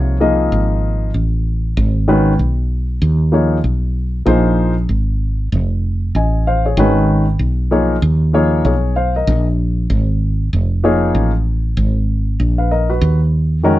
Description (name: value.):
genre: hip hop.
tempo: 96 BPM.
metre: 4/4.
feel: swing 60% on 16ths.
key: Bb phrygian.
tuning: A4 = 441 Hz.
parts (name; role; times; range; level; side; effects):
warm upright piano; accompaniment; 0.0-13.8 s; Eb3 to Ab5; -16 LUFS; left 1 dB; none.
woody fretless electric bass; bass; 0.0-13.8 s; F1 to F2; -15 LUFS; equal; none.
room: light reverb.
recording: band playing live in one room.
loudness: -13 LUFS.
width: side -15 dB against mid.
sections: 0.0-13.8 A section.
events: none.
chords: 0.0 Bb7sus2; 1.8 Abm7; 3.0 Ebsus2; 4.3 Bbsus2; 6.8 Abm9; 8.0 Ebsus2; 9.3 Bbm7; 11.8 Absus2; 13.0 Ebm9.